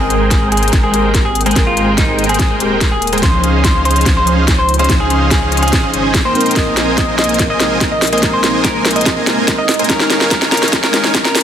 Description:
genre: future bass.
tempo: 144 BPM.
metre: 4/4.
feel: half-time.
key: Ab major.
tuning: A4 = 440 Hz.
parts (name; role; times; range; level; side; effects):
semi-hollow electric guitar; melody; 0.0-11.4 s; Eb4 to Eb5; -18 LUFS; equal; sidechain pumping, low-pass filter, digital delay.
glassy digital keys; accompaniment; 0.0-11.4 s; F3 to G5; -21 LUFS; left 2 dB; chorus, sidechain pumping.
shimmering ambient pad; sustained chords; 1.1-11.4 s; C3 to G5; -28 LUFS; right 2 dB; none.
dense compressed supersaw; riff; 0.0-11.3 s; Ab3 to Bb5; -17 LUFS; right 1 dB; sidechain pumping, low-pass filter.
saturated sub bass; bass; 0.0-11.4 s; Eb1 to Db2; -20 LUFS; equal; sidechain pumping.
trap drum kit; drums; 0.1-11.4 s; hi-hat, snare drum; -16 LUFS; equal; studio reverb, soft clipping on snare.
electronic kick drum; drums; 0.3-11.2 s; none; -16 LUFS; equal; studio reverb.
room: light reverb, digital ambience.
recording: dense, heavily limited modern master, high-pass filter.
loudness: -10 LUFS.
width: side -9 dB against mid.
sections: 0.0-11.4 A section.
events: build-up 0.0-11.4; drum fill 0.0-11.4; filter sweep 0.0-11.4.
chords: 0.0 Abmaj9; 3.2 Dbmaj9; 6.4 Bb9sus4; 9.9 Eb7sus4.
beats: 0.31 0.73 1.15 | 1.56 1.98 2.40 2.81 | 3.23 3.65 4.06 4.48 | 4.89 5.31 5.73 6.14 | 6.56 6.98 7.39 7.81 | 8.23 8.64 9.06 9.48 | 9.89 10.31 10.73 11.14.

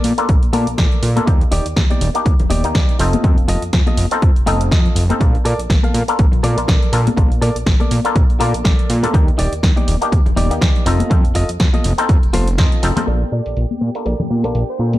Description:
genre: filtered disco house.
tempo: 122 BPM.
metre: 4/4.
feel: swing 56% on 16ths.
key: Bb major.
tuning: A4 = 443 Hz.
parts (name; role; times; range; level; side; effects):
auto-wah clav; accompaniment; 0.0-15.0 s; Bb3 to A5; -22 LUFS; left 2 dB; overdrive, phaser, sidechain pumping, low-pass filter.
direct-recorded clean electric guitar; riff; 0.0-14.8 s; Eb4 to F5; -25 LUFS; equal; sidechain pumping, low-pass filter.
fat analog bass; bass; 0.0-15.0 s; Eb1 to Bb2; -18 LUFS; equal; sidechain pumping, low-pass filter.
punchy analog drum machine; drums; 0.0-15.0 s; hi-hat, snare drum; -23 LUFS; equal; sidechain pumping on hats, low-pass filter on hats, sidechain pumping on cymbals, low-pass filter on cymbals, low-pass filter on snare.
tambourine and congas; percussion; 0.0-15.0 s; none; -25 LUFS; left 4 dB; sidechain pumping on perc, low-pass filter on perc.
electronic kick drum; drums; 0.3-12.7 s; none; -15 LUFS; equal; none.
bright studio violin section; sustained chords; 13.1-15.0 s; G4 to G5; -34 LUFS; left 1 dB; vintage 12-bit sampler grit, sidechain pumping, low-pass filter.
analog synth brass; melody; 13.3-14.9 s; C5 to D5; -29 LUFS; right 4 dB; chorus, cassette tape, sidechain pumping, low-pass filter.
room: little or no reverb.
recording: dark, warm production.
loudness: -13 LUFS.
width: side -15 dB against mid.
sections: 0.0-13.1 A section; 13.1-15.0 B section.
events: filter sweep 13.1-15.0.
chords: 0.0 Bbmaj7; 1.3 Ebmaj7; 3.0 F7; 5.2 Bbmaj7; 9.1 Ebmaj7; 10.9 F7; 13.1 Bbmaj7.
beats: 0.29 0.78 | 1.27 1.77 2.26 2.75 | 3.24 3.73 4.22 4.72 | 5.21 5.70 6.19 6.68 | 7.17 7.67 8.16 8.65 | 9.14 9.63 10.13 10.62 | 11.11 11.60 12.09 12.59 | 13.08 13.57 14.06 14.55.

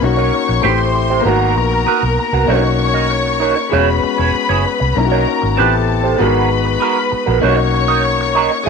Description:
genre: soul.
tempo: 97 BPM.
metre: 4/4.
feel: straight.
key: B major.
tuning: A4 = 441 Hz.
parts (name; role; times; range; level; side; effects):
warm studio string section; second line; 0.0-8.7 s; A4 to C#6; -18 LUFS; left 2 dB; none.
warm concert grand piano; accompaniment; 0.0-8.7 s; G#3 to G4; -19 LUFS; left 11 dB; none.
electric guitar through a small old amp; riff; 0.0-8.7 s; B3 to D#5; -18 LUFS; right 13 dB; wah.
vintage muted fingered electric bass; bass; 0.0-8.7 s; E1 to C2; -18 LUFS; equal; none.
room: light reverb.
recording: 1960s-style stereo with parts hard left and right.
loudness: -12 LUFS.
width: side -5 dB against mid.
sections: 0.0-8.7 A section.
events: none.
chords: 0.0 Bmaj9; 0.6 Am9; 1.3 G#m9; 2.5 Bmaj9; 3.7 E6; 5.0 Bmaj9; 5.6 Am9; 6.2 G#m9; 7.4 Bmaj9.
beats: | 0.02 0.64 1.26 1.88 | 2.49 3.11 3.73 4.35 | 4.97 5.58 6.20 6.82 | 7.44 8.06 8.68.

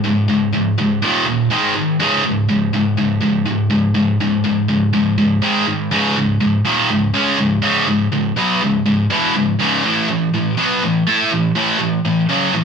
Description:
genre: metal.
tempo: 122 BPM.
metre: 4/4.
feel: straight.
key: C# minor.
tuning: A4 = 440 Hz.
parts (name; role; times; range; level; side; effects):
high-gain distorted guitar; solo; 0.0-12.6 s; C#2 to A4; -14 LUFS; equal; distortion.
room: moderate studio reverb, RT60 0.8 s.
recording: band playing live in one room.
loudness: -14 LUFS.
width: side -6 dB against mid.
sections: 0.0-5.9 A section; 5.9-12.6 B section.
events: none.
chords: 0.0 C#5; 1.0 D#5; 1.5 G#5; 2.0 C#5; 5.4 G#5; 5.9 C#5; 9.8 A5.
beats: | 0.02 0.51 1.01 1.50 | 1.99 2.48 2.97 3.46 | 3.95 4.44 4.93 5.42 | 5.91 6.40 6.89 7.38 | 7.87 8.36 8.85 9.34 | 9.83 10.32 10.82 11.31 | 11.80 12.29.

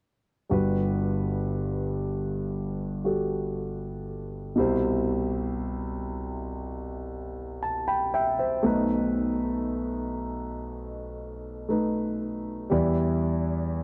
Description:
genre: pop.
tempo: 59 BPM.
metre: 4/4.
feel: straight.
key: G major.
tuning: A4 = 439 Hz.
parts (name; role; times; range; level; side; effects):
warm grand piano; solo; 0.5-13.8 s; G1 to B5; -28 LUFS; equal; delay.
room: little or no reverb.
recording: dark, warm production.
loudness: -28 LUFS.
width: mono.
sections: 0.5-13.8 A section.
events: grand piano fill 7.1-8.6.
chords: 0.5 Gmaj7; 4.6 Cmaj7; 8.6 B7; 12.7 Em7.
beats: | 0.51 1.53 2.55 3.56 | 4.58 5.60 6.61 7.63 | 8.65 9.66 10.68 11.70 | 12.71 13.73.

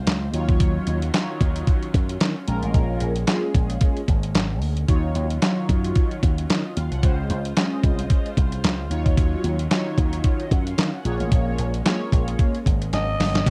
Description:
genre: early-eighties boogie funk.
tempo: 112 BPM.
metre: 4/4.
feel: swing 56% on 16ths.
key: Eb dorian.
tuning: A4 = 440 Hz.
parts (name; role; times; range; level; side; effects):
warm studio string section; sustained chords; 0.0-13.5 s; Db3 to C5; -37 LUFS; equal; cassette tape.
slap bass with an envelope filter; bass; 0.0-13.5 s; G1 to Eb3; -27 LUFS; equal; none.
detuned 8-bit digital drum machine; drums; 0.1-13.5 s; crash cymbal, handclaps, hi-hat, kick drum, snare drum; -23 LUFS; equal; cassette tape.
mellow synth brass; accompaniment; 0.3-13.5 s; Gb3 to Gb5; -31 LUFS; equal; chorus, phaser, cassette tape.
growling alto saxophone; melody; 12.9-13.5 s; Eb5; -27 LUFS; equal; cassette tape.
room: light reverb.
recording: home recording on cassette.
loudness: -22 LUFS.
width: mono.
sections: 0.0-13.5 A section.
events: drum fill 12.9-13.5.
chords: 0.3 Ebm9; 2.5 Bbm7; 4.9 Ebm9; 7.0 Dbmaj7; 8.9 Ebm9; 11.1 Bbm7.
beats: 0.07 | 0.60 1.14 1.68 2.21 | 2.75 3.28 3.82 4.35 | 4.89 5.42 5.96 6.50 | 7.03 7.57 8.10 8.64 | 9.18 9.71 10.25 10.78 | 11.32 11.85 12.39 12.93 | 13.46.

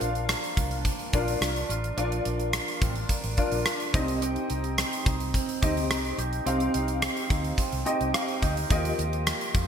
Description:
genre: 1980s-style pop.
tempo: 107 BPM.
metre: 4/4.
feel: straight.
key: unclear.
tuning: A4 = 442 Hz.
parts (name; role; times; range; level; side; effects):
warm concert grand piano; accompaniment; 0.0-9.7 s; Bb3 to G5; -30 LUFS; left 2 dB; ensemble chorus.
clean electric guitar; riff; 0.0-9.7 s; F3 to G4; -34 LUFS; right 5 dB; lush chorus, ping-pong delay.
vintage muted fingered electric bass; bass; 0.0-9.7 s; A1 to F2; -31 LUFS; equal; none.
gated 80s drum kit; drums; 0.0-9.7 s; hi-hat, kick drum, rim click; -28 LUFS; equal; gated reverb.
room: moderate lush hall reverb, RT60 2.2 s.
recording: bright 1980s-style digital production.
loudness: -25 LUFS.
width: side -8 dB against mid.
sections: 0.0-9.7 A section.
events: grand piano fill 7.6-8.7.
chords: 0.0 Bb; 3.9 Cm; 8.7 Ebadd9.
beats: 0.29 0.85 1.42 | 1.98 2.54 3.10 3.66 | 4.22 4.78 5.34 5.90 | 6.46 7.02 7.58 8.14 | 8.70 9.27.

